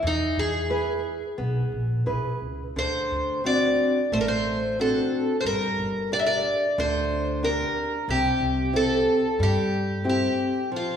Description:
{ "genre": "fado-style ballad", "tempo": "90 BPM", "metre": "4/4", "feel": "rubato", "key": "unclear", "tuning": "A4 = 440 Hz", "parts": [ { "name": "picked twelve-string acoustic guitar", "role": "melody", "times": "0.0-11.0 s", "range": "Eb4 to E5", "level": "-25 LUFS", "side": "equal", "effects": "none" }, { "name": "nylon-string guitar", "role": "accompaniment", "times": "0.0-11.0 s", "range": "C3 to B4", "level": "-27 LUFS", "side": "left 1 dB", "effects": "none" }, { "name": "upright bass", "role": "bass", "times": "0.0-10.2 s", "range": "G1 to G2", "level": "-30 LUFS", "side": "equal", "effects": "none" } ], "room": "wet scoring stage reverb, RT60 1.7 s", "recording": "recorded in a church or concert hall", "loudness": "-22 LUFS", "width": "side -8 dB against mid", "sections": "0.0-11.0 A section", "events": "break 10.7", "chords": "0.0 E; 2.8 D7; 5.4 Gm; 8.1 C" }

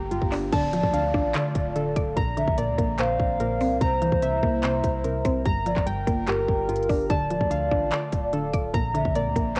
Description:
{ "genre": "hip hop, trap", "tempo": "146 BPM", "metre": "4/4", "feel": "half-time", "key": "D minor", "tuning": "A4 = 437 Hz", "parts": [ { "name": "mallet-like synth pluck", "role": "accompaniment", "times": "0.0-9.6 s", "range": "G2 to D5", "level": "-31 LUFS", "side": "equal", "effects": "chorus, phaser" }, { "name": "muted felt-like synth keys", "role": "arpeggios", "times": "0.0-9.6 s", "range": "F4 to Bb5", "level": "-31 LUFS", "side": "equal", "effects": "chorus, analog delay" }, { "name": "long sustained 808-style bass", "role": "bass", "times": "0.0-9.6 s", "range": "D1 to D2", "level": "-35 LUFS", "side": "equal", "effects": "none" }, { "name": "riser and downlifter", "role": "sound effects", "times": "0.0-3.8 s", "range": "none", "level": "-43 LUFS", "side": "equal", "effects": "none" }, { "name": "trap drum kit", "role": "drums", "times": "0.1-9.6 s", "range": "crash cymbal, handclaps, hi-hat, kick drum", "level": "-30 LUFS", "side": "equal", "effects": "vintage 12-bit sampler grit" }, { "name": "hollow clarinet-like synth lead", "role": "second line", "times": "0.5-9.6 s", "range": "Bb4 to F5", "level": "-31 LUFS", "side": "equal", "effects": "chorus, analog delay" }, { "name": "airy breathy pad", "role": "sustained chords", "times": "0.5-9.6 s", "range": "C3 to Bb4", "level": "-40 LUFS", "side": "equal", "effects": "chorus" } ], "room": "light reverb", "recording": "home recording on cassette", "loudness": "-24 LUFS", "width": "mono", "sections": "0.5-9.6 A section", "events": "riser 0.0-0.5", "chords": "0.0 Gm7; 0.5 Dm; 2.2 Bbadd9; 3.8 C7; 5.5 Gm7; 7.1 Dm; 8.7 Bbadd9" }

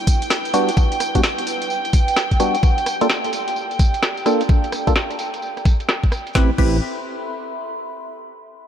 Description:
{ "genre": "UK garage, two-step garage", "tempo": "129 BPM", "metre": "4/4", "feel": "swing 64% on 16ths", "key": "A minor", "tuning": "A4 = 440 Hz", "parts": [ { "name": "warm symphonic violin section", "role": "sustained chords", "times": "0.0-6.4 s", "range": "G5", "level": "-25 LUFS", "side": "right 2 dB", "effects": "sidechain pumping, low-pass filter" }, { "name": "warbly tape-like pad", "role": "texture", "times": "0.0-8.2 s", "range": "D4 to C6", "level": "-32 LUFS", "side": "right 1 dB", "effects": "chorus, built-in reverb, sidechain pumping" }, { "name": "electronic kick drum", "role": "drums", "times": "0.1-6.7 s", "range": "none", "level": "-16 LUFS", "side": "equal", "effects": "overdrive" }, { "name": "garage drum kit", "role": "drums", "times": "0.1-6.7 s", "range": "crash cymbal, hi-hat, rim click, snare drum, tambourine", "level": "-24 LUFS", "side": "equal", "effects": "overdrive, low-pass filter on hats, low-pass filter on snare, low-pass filter on perc, low-pass filter on cymbals" }, { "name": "percussive organ stab", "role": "stabs", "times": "0.5-6.8 s", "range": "G3 to B4", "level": "-22 LUFS", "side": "equal", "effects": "chorus, phaser, analog delay" }, { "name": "dark detuned saw bass", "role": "bass", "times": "6.4-6.8 s", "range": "A1", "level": "-20 LUFS", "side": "equal", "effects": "none" } ], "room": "moderate huge ambient reverb, RT60 3.9 s", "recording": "dreamy mix soaked in reverb", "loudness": "-17 LUFS", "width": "side -9 dB against mid", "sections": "0.0-6.4 A section; 6.4-8.2 B section", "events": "fade-out on ambient pad 0.0-6.4; filter sweep on violin section 0.0-6.4", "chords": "0.0 Em9; 2.6 Gm9; 6.4 Am9" }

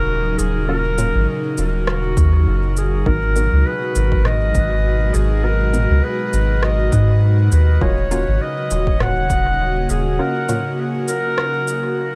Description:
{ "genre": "ambient dub", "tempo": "101 BPM", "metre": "4/4", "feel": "swing 56% on 16ths", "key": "G# minor", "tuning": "A4 = 440 Hz", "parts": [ { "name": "mellow clarinet", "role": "melody", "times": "0.0-12.2 s", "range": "F#4 to F#5", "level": "-24 LUFS", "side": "equal", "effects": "dub echo" }, { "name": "airy breathy pad", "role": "sustained chords", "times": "0.0-12.2 s", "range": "A#2 to F#4", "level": "-27 LUFS", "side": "equal", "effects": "chorus" }, { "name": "soft dub sub bass", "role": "bass", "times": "0.0-10.2 s", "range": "D#1 to G#2", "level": "-19 LUFS", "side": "equal", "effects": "none" }, { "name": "organic electronic drum kit", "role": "drums", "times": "0.4-11.8 s", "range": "cabasa, rim click, toms", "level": "-29 LUFS", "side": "equal", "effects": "none" }, { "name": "filtered dub chord stab", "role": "stabs", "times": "0.7-10.6 s", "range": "F#3 to A#4", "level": "-33 LUFS", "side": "equal", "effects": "none" }, { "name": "electronic kick drum", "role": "drums", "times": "2.2-9.4 s", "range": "none", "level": "-24 LUFS", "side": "equal", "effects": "none" } ], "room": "light reverb", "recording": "none", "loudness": "-18 LUFS", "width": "mono", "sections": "0.0-12.2 A section", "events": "none", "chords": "0.0 D#m7; 3.1 G#m7; 7.8 D#m7" }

